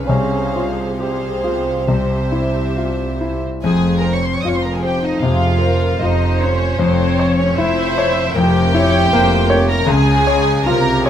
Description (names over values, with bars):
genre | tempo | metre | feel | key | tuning
classical, romantic movement for piano and orchestra | 61-79 BPM | 4/4 | rubato | F minor | A4 = 440 Hz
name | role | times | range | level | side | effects
clear grand piano | melody | 0.0-11.1 s | C2 to Db5 | -18 LUFS | left 2 dB | none
dark studio violin section | melody | 0.0-11.1 s | C5 to Eb6 | -23 LUFS | equal | none
warm symphonic violin section | second line | 0.0-11.1 s | C4 to Eb5 | -23 LUFS | left 1 dB | none
dark symphonic viola section | accompaniment | 0.0-11.1 s | G4 to Db5 | -24 LUFS | left 1 dB | none
warm studio double bass section | bass | 0.0-11.1 s | F1 to Db2 | -22 LUFS | right 2 dB | none
warm symphonic cello section | bass | 0.0-11.1 s | F2 to Db3 | -23 LUFS | right 2 dB | none
dark bassoon | accompaniment | 0.1-2.7 s | C4 to Db4 | -23 LUFS | right 3 dB | none
room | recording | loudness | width
light reverb | close, detailed microphones | -14 LUFS | side -9 dB against mid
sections
0.0-3.6 A section; 3.6-11.1 B section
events
none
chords
0.1 Fm/C; 1.9 C; 3.6 F5; 6.8 C7b9/F; 9.9 Db